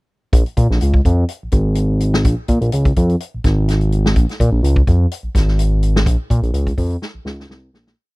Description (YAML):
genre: afrobeat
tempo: 126 BPM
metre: 4/4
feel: straight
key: Bb minor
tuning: A4 = 440 Hz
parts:
  - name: smooth synth bass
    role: bass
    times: 0.3-7.9 s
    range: Ab1 to Bb2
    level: -15 LUFS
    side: equal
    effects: none
  - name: vintage drum kit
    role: drums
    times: 0.3-8.0 s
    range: hi-hat, kick drum, snare drum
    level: -18 LUFS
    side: equal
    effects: none
room: little or no reverb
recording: dry, close 1970s-style studio recording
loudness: -14 LUFS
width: side -24 dB against mid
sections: 0.3-8.0 groove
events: fade-out 6.1-8.0; drum fill 7.0-8.0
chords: none